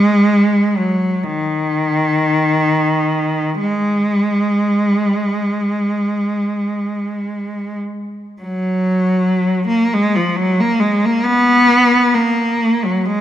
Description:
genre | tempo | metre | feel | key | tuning
classical, free, expressive piece for unaccompanied cello | 39-68 BPM | 4/4 | rubato | unclear | A4 = 440 Hz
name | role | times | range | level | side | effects
clear cello | solo | 0.0-13.2 s | D#3 to B3 | -14 LUFS | equal | none
room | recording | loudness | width
wet concert hall reverb, RT60 2.0 s | none | -14 LUFS | side -11 dB against mid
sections
0.0-8.4 A section; 8.4-13.2 B section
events
none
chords
none

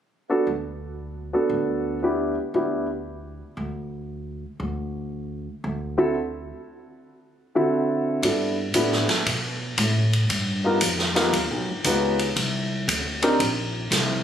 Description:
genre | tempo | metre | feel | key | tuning
jazz, big band swing | 116 BPM | 4/4 | swing 67% on 8ths | G major | A4 = 439 Hz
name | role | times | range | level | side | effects
warm grand piano | accompaniment | 0.3-2.9, 6.0-13.4 s | D3 to B4 | -23 LUFS | equal | none
upright bass | bass | 0.5-14.2 s | G1 to B2 | -28 LUFS | equal | none
swinging big-band drum kit | drums | 8.2-14.1 s | hi-hat, kick drum, ride cymbal, snare drum | -24 LUFS | equal | none
room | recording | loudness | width
light reverb | recorded on a phone in the room, studio ambience, compression | -22 LUFS | side -9 dB against mid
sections
0.0-8.2 A section; 8.2-14.2 B section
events
none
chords
0.0 D6; 2.0 G6/D; 4.1 D9; 8.2 G69; 10.3 G7alt; 12.4 C7sus2

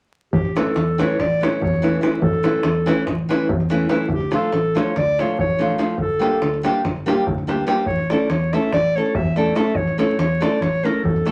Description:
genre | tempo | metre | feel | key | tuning
balkan folk, Balkan wedding band | 287 BPM (eighths) | 9/8 | straight | A phrygian dominant | A4 = 440 Hz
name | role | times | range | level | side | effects
warm clarinet | melody | 0.3-11.3 s | G4 to E5 | -24 LUFS | equal | none
fingered electric bass | bass | 0.3-11.3 s | G1 to E2 | -26 LUFS | equal | none
davul | percussion | 0.3-11.3 s | none | -27 LUFS | equal | none
nylon-string guitar | accompaniment | 0.6-11.3 s | E3 to A4 | -23 LUFS | equal | none
room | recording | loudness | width
moderate studio reverb, RT60 0.5 s | vinyl crackle | -20 LUFS | mono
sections
0.3-11.3 A section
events
none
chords
0.3 A; 4.1 Dm; 6.0 Gm; 7.9 A

